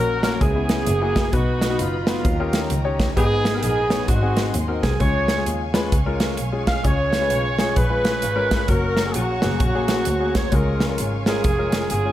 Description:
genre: uptempo gospel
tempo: 130 BPM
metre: 4/4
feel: swing 62% on 8ths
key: unclear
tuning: A4 = 439 Hz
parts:
  - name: growling alto saxophone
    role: melody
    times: 0.0-12.1 s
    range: E#4 to E#5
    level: -26 LUFS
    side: right 3 dB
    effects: none
  - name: warm horn section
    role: melody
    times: 0.0-12.1 s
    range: A#3 to E#5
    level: -27 LUFS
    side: left 1 dB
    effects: none
  - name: warm concert grand piano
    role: accompaniment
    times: 0.0-12.1 s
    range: G#2 to C#5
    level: -26 LUFS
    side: left 4 dB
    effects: none
  - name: warm studio string section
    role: sustained chords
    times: 0.0-12.1 s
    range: A#4 to C#6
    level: -34 LUFS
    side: right 2 dB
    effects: none
  - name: warm double bass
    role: bass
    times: 0.0-12.1 s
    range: E#1 to D#2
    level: -25 LUFS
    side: equal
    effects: none
  - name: modern studio drum kit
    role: drums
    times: 0.2-12.0 s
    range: hi-hat, kick drum, snare drum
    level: -22 LUFS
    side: equal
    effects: none
room: light reverb, small room ambience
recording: none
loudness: -18 LUFS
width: side -13 dB against mid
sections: 0.0-12.1 A section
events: none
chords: 0.4 C#m7; 0.9 F#9; 1.3 B; 2.2 D#7; 3.2 G#m; 4.1 G#7; 5.0 C#; 8.7 F#; 10.5 C#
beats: 0.41 0.87 | 1.33 1.79 2.25 2.71 | 3.17 3.63 4.09 4.55 | 5.00 5.46 5.92 6.38 | 6.84 7.30 7.76 8.22 | 8.69 9.14 9.61 10.07 | 10.53 10.99 11.45 11.91

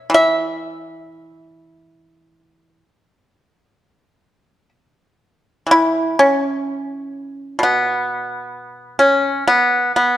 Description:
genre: chinese traditional, Chinese solo plucked strings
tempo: 64 BPM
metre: 4/4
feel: rubato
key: unclear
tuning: A4 = 437 Hz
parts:
  - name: pipa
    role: solo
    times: 0.0-10.2 s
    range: B2 to E5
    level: -15 LUFS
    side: equal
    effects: none
room: moderate scoring stage reverb, RT60 1.6 s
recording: dark, warm production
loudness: -15 LUFS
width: side -13 dB against mid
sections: 0.0-5.7 A section; 5.7-10.2 B section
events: none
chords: none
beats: 0.12 1.02 | 1.93 2.84 3.76 4.72 | 5.69 6.64 7.60 8.54 | 9.47

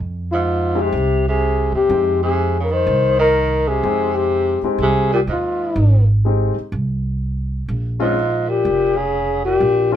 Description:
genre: jazz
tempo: 124 BPM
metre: 4/4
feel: swing 66% on 8ths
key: F minor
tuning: A4 = 442 Hz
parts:
  - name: upright bass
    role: bass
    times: 0.0-10.0 s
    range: F1 to F2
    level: -20 LUFS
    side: right 1 dB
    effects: none
  - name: breathy flugelhorn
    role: melody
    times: 0.3-9.9 s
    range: F4 to C5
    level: -18 LUFS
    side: left 3 dB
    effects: none
  - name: warm tenor saxophone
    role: second line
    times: 0.3-9.9 s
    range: Ab2 to Eb3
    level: -22 LUFS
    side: right 3 dB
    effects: none
  - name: warm concert grand piano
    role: accompaniment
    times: 0.8-10.0 s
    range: Ab3 to G5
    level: -22 LUFS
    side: left 4 dB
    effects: none
room: moderate studio ambience, RT60 0.5 s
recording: band playing live in one room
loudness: -15 LUFS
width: side -10 dB against mid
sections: 0.0-10.0 A section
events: none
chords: 0.0 Fm7; 7.7 Bbm7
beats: 0.46 0.94 1.42 | 1.91 2.39 2.87 3.35 | 3.83 4.32 4.80 5.28 | 5.76 6.25 6.73 7.21 | 7.69 8.17 8.65 9.13 | 9.62

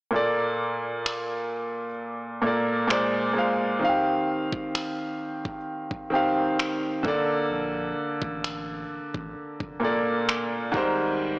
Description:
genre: contemporary R&B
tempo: 65 BPM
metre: 4/4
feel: swing 54% on 16ths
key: Bb major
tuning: A4 = 440 Hz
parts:
  - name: clear baby grand piano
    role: accompaniment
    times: 0.1-11.4 s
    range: Ab2 to F5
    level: -24 LUFS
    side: equal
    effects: none
  - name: dusty soul sampler-style drum kit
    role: drums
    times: 1.1-11.0 s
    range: finger snaps, kick drum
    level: -30 LUFS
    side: equal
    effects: soft clipping on snare
  - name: saturated sub bass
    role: bass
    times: 7.5-11.4 s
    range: F1 to Bb1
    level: -41 LUFS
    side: equal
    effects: none
room: light reverb, digital ambience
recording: blown-out, overdriven recording, overdrive, small speaker sound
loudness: -24 LUFS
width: side -23 dB against mid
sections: 0.1-11.4 A section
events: break 11.2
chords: 0.1 Bbmaj7; 2.9 Bb9; 3.8 Eb69; 7.0 Bbmaj7; 10.7 Abmaj9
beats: | 0.12 1.05 1.97 2.89 | 3.82 4.74 5.66 6.59 | 7.51 8.43 9.36 10.28 | 11.20

